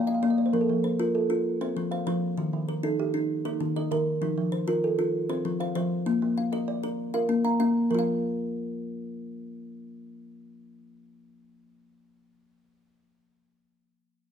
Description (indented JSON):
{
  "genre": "southern african traditional, mbira-style interlocking cycle",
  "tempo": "130 BPM (dotted quarters)",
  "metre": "12/8",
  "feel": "straight",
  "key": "F mixolydian",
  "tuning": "A4 = 440 Hz",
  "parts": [
    { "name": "kalimba", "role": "arpeggios", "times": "0.0-12.3 s", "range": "Eb3 to F5", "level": "-27 LUFS", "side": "left 2 dB", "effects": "none" },
    { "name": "kalimba", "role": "arpeggios", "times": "0.0-12.3 s", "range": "Eb3 to Bb5", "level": "-29 LUFS", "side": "right 4 dB", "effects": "none" }
  ],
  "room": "moderate large studio reverb, RT60 1.1 s",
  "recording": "band playing live in one room",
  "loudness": "-25 LUFS",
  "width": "side -8 dB against mid",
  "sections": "0.0-7.9 A section; 7.9-11.6 B section",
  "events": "kalimba fill 0.0-0.5",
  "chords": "0.0 Bb; 0.5 F; 2.4 Eb; 4.2 F; 6.1 Bb; 7.9 N.C.",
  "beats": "0.08 | 0.54 1.00 1.46 1.92 | 2.38 2.84 3.30 3.76 | 4.22 4.68 5.14 5.60 | 6.06 6.52 6.98 7.44 | 7.90 8.37 8.83 9.29 | 9.75 10.21 10.67 11.13"
}